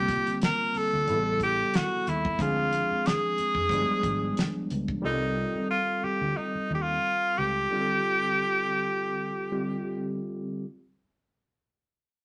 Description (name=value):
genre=R&B, neo-soul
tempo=77-91 BPM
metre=4/4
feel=swing 54% on 16ths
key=C dorian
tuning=A4 = 440 Hz
part: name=bright tenor saxophone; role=melody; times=0.0-10.3 s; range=Eb4 to Bb4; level=-29 LUFS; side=equal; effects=none
part: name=tine electric piano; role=accompaniment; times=0.0-10.7 s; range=C3 to A4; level=-34 LUFS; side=equal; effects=none
part: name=vintage muted fingered electric bass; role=bass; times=0.0-7.7 s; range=G1 to F2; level=-36 LUFS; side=equal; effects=none
part: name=damped 70s drum kit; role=drums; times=0.1-5.0 s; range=hi-hat, kick drum, snare drum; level=-33 LUFS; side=equal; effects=none
room=moderate studio reverb, RT60 0.6 s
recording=none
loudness=-28 LUFS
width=mono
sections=0.0-10.6 A section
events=slowing down 5.0-10.6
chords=0.0 C5; 1.1 A7; 2.4 Dm7b5; 3.7 G7b9; 5.0 Cm69